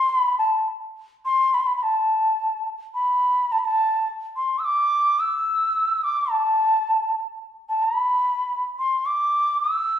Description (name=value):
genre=indian classical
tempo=108 BPM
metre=4/4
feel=straight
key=unclear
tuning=A4 = 440 Hz
part: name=mellow bansuri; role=solo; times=0.0-10.0 s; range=A5 to E6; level=-20 LUFS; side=equal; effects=none
room=wet large studio reverb, RT60 1.2 s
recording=band playing live in one room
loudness=-20 LUFS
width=side -9 dB against mid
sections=0.0-1.8 A section; 1.8-10.0 B section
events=speeding up 0.0-10.0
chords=none